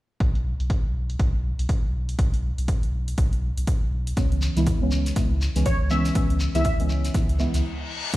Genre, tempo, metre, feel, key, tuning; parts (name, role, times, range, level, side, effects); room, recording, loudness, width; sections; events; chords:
deep house; 121 BPM; 4/4; swing 60% on 16ths; A4 = 437 Hz
sub bass with octave; bass; 0.2-8.2 s; B1 to C#2; -24 LUFS; equal
electronic kick drum; drums; 0.2-8.2 s; -23 LUFS; equal
punchy analog drum machine; drums; 0.2-8.2 s; crash cymbal, hi-hat; -40 LUFS; right 1 dB; overdrive, low-pass filter on hats, low-pass filter on cymbals
deep mellow chord stab; stabs; 4.2-8.2 s; D3 to E4; -26 LUFS; right 1 dB; chorus, phaser, sidechain pumping, dub echo
shekere; percussion; 4.2-7.6 s; -36 LUFS; left 2 dB
plucky unison lead; melody; 5.7-6.7 s; C#5 to E5; -30 LUFS; left 1 dB; wide subtle chorus, tape echo
reverse cymbal; sound effects; 7.5-8.1 s; -31 LUFS; left 5 dB
little or no reverb; played on a big sound system in a bare room, stone room reverb; -21 LUFS; side -17 dB against mid
0.2-8.1 A section
filter sweep on sub bass 0.2-8.1; reverse cymbal 7.5-8.1; break 7.6-8.1
0.2 N.C.; 4.2 C#m7